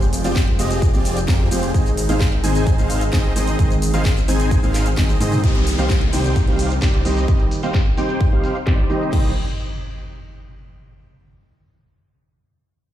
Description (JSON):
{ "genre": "EDM, festival progressive house", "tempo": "130 BPM", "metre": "4/4", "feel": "straight", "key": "C minor", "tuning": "A4 = 441 Hz", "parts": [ { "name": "felt-muted upright piano", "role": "accompaniment", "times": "0.0-9.3 s", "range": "Eb3 to Ab4", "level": "-25 LUFS", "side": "right 4 dB", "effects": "sidechain pumping, digital delay" }, { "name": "lush unison pad", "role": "sustained chords", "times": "0.0-5.4 s", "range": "F3 to G5", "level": "-30 LUFS", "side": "left 2 dB", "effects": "chorus, sidechain pumping" }, { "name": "dense compressed supersaw", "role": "riff", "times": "0.0-9.3 s", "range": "C4 to Ab5", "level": "-24 LUFS", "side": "left 1 dB", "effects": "sidechain pumping, low-pass filter, digital delay" }, { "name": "wide detuned saw bass", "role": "bass", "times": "0.0-9.3 s", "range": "F1 to Ab2", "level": "-22 LUFS", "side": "equal", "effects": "chorus, sidechain pumping" }, { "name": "house drum kit", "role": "drums", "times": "0.0-9.2 s", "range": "crash cymbal, hi-hat, shaker, snare drum, toms", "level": "-28 LUFS", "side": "left 1 dB", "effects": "low-pass filter on hats, low-pass filter on perc, low-pass filter on snare, low-pass filter on toms, low-pass filter on cymbals" }, { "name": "electronic kick drum", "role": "drums", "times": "0.4-9.2 s", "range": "none", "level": "-18 LUFS", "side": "equal", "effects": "none" }, { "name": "downlifter and impact", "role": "sound effects", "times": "5.4-11.0 s", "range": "none", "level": "-29 LUFS", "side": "left 1 dB", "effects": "none" } ], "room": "little or no reverb", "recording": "played on a big sound system in a bare room, stone room reverb", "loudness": "-16 LUFS", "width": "side -12 dB against mid", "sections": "0.0-5.4 A section; 5.4-9.1 B section; 9.1-11.0 C section", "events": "drop 0.0-5.4; drum fill 5.0-5.4; filter sweep on supersaw synth 5.4-9.1", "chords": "0.0 Fmadd9; 1.7 Ab; 5.4 Cm", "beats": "0.36 0.82 1.28 | 1.74 2.21 2.67 3.13 | 3.59 4.05 4.51 4.97 | 5.44 5.90 6.36 6.82 | 7.28 7.74 8.21 8.67 | 9.13 9.59 10.05 10.51" }